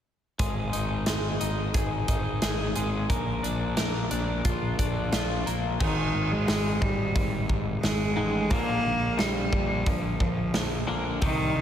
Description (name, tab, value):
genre	quiet-loud alternative rock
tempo	89 BPM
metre	4/4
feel	straight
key	unclear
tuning	A4 = 441 Hz
part	twelve-string electric guitar	arpeggios	0.4-11.6 s	Ab2 to Ab4	-31 LUFS	left 3 dB	wide subtle chorus, slapback echo, tape echo
part	fuzz picked electric bass	bass	0.4-11.6 s	Ab1 to C2	-30 LUFS	equal	overdrive
part	big rock drum kit	drums	0.4-11.4 s	crash cymbal, hi-hat, kick drum, snare drum	-29 LUFS	equal	none
part	clear cello	melody	5.8-11.6 s	Eb3 to Bb3	-28 LUFS	right 1 dB	slapback echo
room	moderate lush hall reverb, RT60 2.8 s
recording	big arena sound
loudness	-24 LUFS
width	side -10 dB against mid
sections	0.4-5.8 A section; 5.8-11.6 B section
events	none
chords	0.4 Ab5; 3.1 Bb; 5.8 Ab5; 8.5 Bb